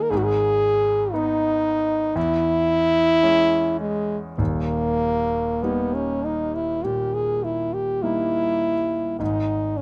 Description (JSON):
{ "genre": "classical, romantic duo for French horn and grand piano", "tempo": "48-60 BPM", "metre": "4/4", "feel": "rubato", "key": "unclear", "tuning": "A4 = 440 Hz", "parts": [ { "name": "warm French horn", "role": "melody", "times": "0.0-9.8 s", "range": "G#3 to A#4", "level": "-23 LUFS", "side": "equal", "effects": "none" }, { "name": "warm concert grand piano", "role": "accompaniment", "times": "0.0-9.8 s", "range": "D#1 to D#4", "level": "-29 LUFS", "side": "equal", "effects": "none" } ], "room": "little or no reverb", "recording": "close, detailed microphones", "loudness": "-22 LUFS", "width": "mono", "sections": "0.0-9.8 A section", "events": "none", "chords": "0.1 G#m; 2.2 C#m/E; 4.4 D#; 9.2 G#5" }